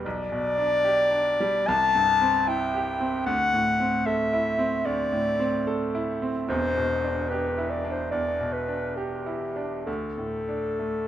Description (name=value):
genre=classical, romantic duo for clarinet and grand piano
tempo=73 BPM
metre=4/4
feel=uneven beats, rubato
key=unclear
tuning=A4 = 440 Hz
part: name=dark clarinet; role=melody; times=0.0-11.1 s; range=G4 to A5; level=-24 LUFS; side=left 2 dB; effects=none
part: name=bright grand piano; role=accompaniment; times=0.0-11.1 s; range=E1 to A4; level=-28 LUFS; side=right 2 dB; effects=none
room=moderate recital hall reverb, RT60 1.5 s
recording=close, detailed microphones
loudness=-23 LUFS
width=side -11 dB against mid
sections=0.0-11.1 A section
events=none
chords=0.0 G/B; 1.7 C; 3.3 D9; 6.5 Em7; 9.9 D5